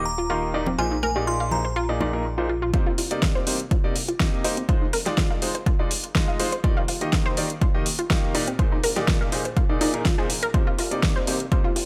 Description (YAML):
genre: progressive house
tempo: 123 BPM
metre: 4/4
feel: straight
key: unclear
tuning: A4 = 440 Hz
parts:
  - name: glassy synth bell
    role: melody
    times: 0.0-2.5 s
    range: Ab5 to C6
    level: -31 LUFS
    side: equal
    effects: chorus, sidechain pumping, delay
  - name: clear concert grand piano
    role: stabs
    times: 0.0-11.7 s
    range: Bb2 to F5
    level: -31 LUFS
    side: equal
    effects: sidechain pumping, low-pass filter, delay
  - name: fat analog bass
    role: bass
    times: 0.0-11.9 s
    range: Eb1 to C2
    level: -35 LUFS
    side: equal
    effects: sidechain pumping, high-pass filter
  - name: woodblock and congas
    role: percussion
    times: 0.1-2.7 s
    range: none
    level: -36 LUFS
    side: equal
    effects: sidechain pumping on perc
  - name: analog pluck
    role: arpeggios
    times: 0.2-11.8 s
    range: C4 to F5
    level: -31 LUFS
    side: equal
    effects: chorus, sidechain pumping, delay
  - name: deep house drum kit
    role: drums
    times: 2.7-11.9 s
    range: hi-hat, snare drum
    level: -29 LUFS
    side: equal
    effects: overdrive, small room ambience
  - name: electronic kick drum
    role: drums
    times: 2.7-11.6 s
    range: none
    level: -25 LUFS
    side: equal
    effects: overdrive, small room ambience
room: light reverb, digital ambience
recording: none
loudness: -23 LUFS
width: mono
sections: 0.0-2.7 A section; 2.7-11.9 B section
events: build-up 2.7-11.9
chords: 0.0 Ebmaj7; 0.8 Bb9sus4; 2.7 Cm7; 4.7 Fm7; 6.6 Ebmaj7; 8.6 Bb9sus4; 10.5 Cm7